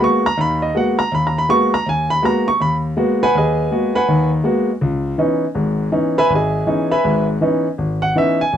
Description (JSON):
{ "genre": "jazz", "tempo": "162 BPM", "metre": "4/4", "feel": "swing 64% on 8ths", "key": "G# minor", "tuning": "A4 = 441 Hz", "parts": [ { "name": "warm grand piano", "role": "solo", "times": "0.0-8.6 s", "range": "G#1 to C#6", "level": "-15 LUFS", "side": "equal", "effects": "none" } ], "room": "light reverb", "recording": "dry, close 1970s-style studio recording", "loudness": "-15 LUFS", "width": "side -9 dB against mid", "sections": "0.0-8.6 A section", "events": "none", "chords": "0.0 G#m9; 4.8 C#m9" }